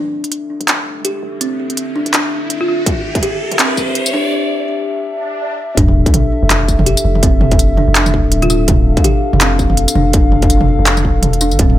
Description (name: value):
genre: half-time drum and bass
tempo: 165 BPM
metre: 4/4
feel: swing 58% on 16ths, half-time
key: D minor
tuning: A4 = 443 Hz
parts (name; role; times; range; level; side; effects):
- dark analog pad; sustained chords; 0.0-11.8 s; D4 to F5; -21 LUFS; left 2 dB; chorus, vintage 12-bit sampler grit, sidechain pumping
- kalimba; arpeggios; 0.0-11.8 s; C4 to G4; -21 LUFS; equal; low-pass filter, digital delay
- long sustained 808-style bass; bass; 0.0-11.8 s; D1 to G1; -15 LUFS; equal; high-pass filter
- riser, swell and sub drop; sound effects; 1.7-7.2 s; none; -22 LUFS; equal; none
- industrial drum kit; drums; 0.2-11.8 s; handclaps, hi-hat, tambourine, toms; -16 LUFS; right 1 dB; high-pass filter on hats, high-pass filter on snare, high-pass filter on toms, high-pass filter on perc, high-pass filter on room
- folk marimba with medium hard mallets; melody; 2.6-2.8, 8.4-8.6 s; F4; -21 LUFS; right 1 dB; vintage 12-bit sampler grit, low-pass filter, digital delay
- electronic kick drum; drums; 2.9-11.7 s; none; -14 LUFS; equal; distortion
room: light reverb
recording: high-pass filter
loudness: -12 LUFS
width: side -13 dB against mid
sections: 0.0-5.8 A section; 5.8-11.8 B section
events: build-up 0.0-5.8; filter sweep on analog synth pad 0.0-5.8; filter sweep on kalimba 0.0-5.8; filter sweep 0.0-5.8; riser 1.7-4.3; break 4.3-5.8; swell 5.2-5.8; drop 5.8-11.8; impact 5.8-7.2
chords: 0.0 D5